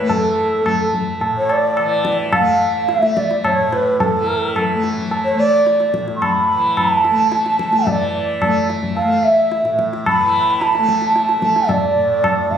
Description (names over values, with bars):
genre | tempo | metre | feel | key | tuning
indian classical, Hindustani | 109 BPM | 7/4 | straight | unclear | A4 = 439 Hz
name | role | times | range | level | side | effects
mellow bansuri | melody | 0.0-12.6 s | A4 to C#6 | -16 LUFS | right 1 dB | none
tanpura | drone | 0.0-12.6 s | A2 to A3 | -23 LUFS | left 2 dB | none
tabla | percussion | 0.1-12.6 s | none | -20 LUFS | left 1 dB | none
room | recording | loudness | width
moderate recital hall reverb, RT60 1.4 s | recorded on a phone in the room, studio reverb, compression | -14 LUFS | side -8 dB against mid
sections
0.0-7.9 A section; 7.9-12.6 B section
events
speeding up 0.0-12.6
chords
none